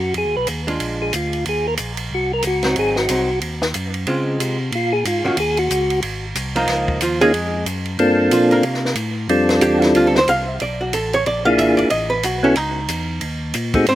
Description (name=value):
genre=soul jazz organ trio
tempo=184 BPM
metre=4/4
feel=swing 61% on 8ths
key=unclear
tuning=A4 = 440 Hz
part: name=percussive tonewheel organ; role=melody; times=0.0-13.9 s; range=G3 to Cb5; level=-17 LUFS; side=equal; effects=slow rotary speaker, slapback echo
part: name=tonewheel organ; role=bass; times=0.0-13.9 s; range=Ab1 to Db3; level=-25 LUFS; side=equal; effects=overdrive, chorus vibrato, slow rotary speaker
part: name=compact cocktail drum kit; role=drums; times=0.1-13.9 s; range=hi-hat, kick drum, ride cymbal, snare drum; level=-25 LUFS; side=right 1 dB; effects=none
part: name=archtop guitar, miked and amplified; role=accompaniment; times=0.7-13.9 s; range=Eb3 to F5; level=-20 LUFS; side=right 1 dB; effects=slapback echo
room=little or no reverb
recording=recorded outdoors, with no room sound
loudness=-16 LUFS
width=side -14 dB against mid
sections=0.0-6.7 A section; 6.7-13.9 A section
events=tonewheel organ solo 0.0-6.7; hollow-body jazz guitar solo 6.7-13.9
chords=0.1 Fm7b5; 0.8 Bb7; 1.5 Ebm7; 2.8 Ab7; 4.1 Dbmaj7; 4.7 Bbm7; 5.4 Ebm7; 6.0 Ab; 6.7 Db69; 8.0 Gm11; 8.6 Am; 9.3 F6; 10.6 A69; 11.3 Bb7#11; 11.9 A69; 13.2 Ebmadd11